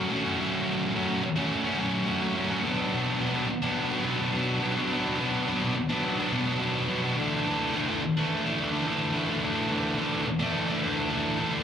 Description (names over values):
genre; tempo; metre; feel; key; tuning
rock; 106 BPM; 4/4; straight; unclear; A4 = 443 Hz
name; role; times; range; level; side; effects
thick fuzz guitar; solo; 0.0-11.6 s; B2 to F#4; -25 LUFS; equal; distortion, slapback echo
room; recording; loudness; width
light reverb, digital ambience; live gig heard through the venue's PA, club reverb; -25 LUFS; side -8 dB against mid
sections
0.0-2.6 A section; 2.6-11.6 B section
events
none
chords
0.0 F#m; 2.6 Bm; 7.2 Dsus2